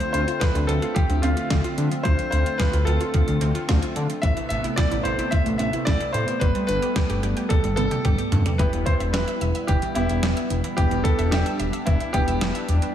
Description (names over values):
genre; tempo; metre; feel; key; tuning
synth-pop; 110 BPM; 4/4; straight; unclear; A4 = 440 Hz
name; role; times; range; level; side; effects
bright concert grand piano; melody; 0.0-12.9 s; E4 to E5; -27 LUFS; equal; slapback echo, tape echo
brassy analog pad; sustained chords; 0.0-12.9 s; C3 to E5; -29 LUFS; right 1 dB; chorus, tremolo
analog pluck; arpeggios; 0.0-12.9 s; E3 to E5; -31 LUFS; right 3 dB; chorus, slapback echo, tape echo
clean 12-bit digital drum machine; drums; 0.0-12.9 s; hi-hat, kick drum, snare drum, toms; -24 LUFS; equal; none
fat analog bass; bass; 0.1-12.8 s; E1 to D3; -23 LUFS; equal; none
warm baby grand piano; accompaniment; 8.6-12.7 s; B3 to G4; -31 LUFS; left 4 dB; slapback echo
room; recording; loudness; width
moderate scoring stage reverb, RT60 1.7 s, digital ambience; big arena sound; -20 LUFS; side -10 dB against mid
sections
0.0-8.6 A section; 8.6-12.9 B section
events
drum fill 7.5-8.6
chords
0.0 Dm7; 4.2 Amadd9; 6.4 Gadd9; 8.6 Em